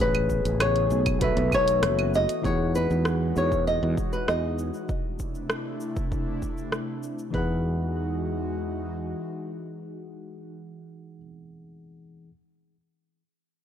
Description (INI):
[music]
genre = sunset chillout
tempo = 98 BPM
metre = 4/4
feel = straight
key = E major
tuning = A4 = 440 Hz
[part]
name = flamenco guitar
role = melody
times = 0.0-11.2 s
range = B4 to D#5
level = -26 LUFS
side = left 1 dB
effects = analog delay
[part]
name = tine electric piano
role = accompaniment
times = 0.0-12.3 s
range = E3 to F#5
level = -33 LUFS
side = moving between left 7 dB and right 6 dB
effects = auto-pan, analog delay
[part]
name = airy breathy pad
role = sustained chords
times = 0.0-10.5 s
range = C3 to G#4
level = -34 LUFS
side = equal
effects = chorus
[part]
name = fretless electric bass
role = bass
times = 0.0-9.1 s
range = F#1 to E2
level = -27 LUFS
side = equal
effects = none
[part]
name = deep house drum kit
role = drums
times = 0.1-7.3 s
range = claves, hi-hat, rim click, shaker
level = -30 LUFS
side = right 1 dB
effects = none
[part]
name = electronic kick drum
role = drums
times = 0.3-7.5 s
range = none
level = -31 LUFS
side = equal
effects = none
[sound]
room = little or no reverb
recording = dry, gritty hardware recording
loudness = -24 LUFS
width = side -9 dB against mid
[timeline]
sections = 0.0-2.4 A section; 2.4-7.3 B section; 7.3-9.8 C section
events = none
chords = 0.0 Amaj9; 1.2 B7sus4; 2.4 Emaj9; 4.9 C69; 7.3 Emaj9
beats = 0.60 1.21 1.82 | 2.44 3.05 3.66 4.27 | 4.88 5.50 6.11 6.72 | 7.33 7.95 8.56 9.17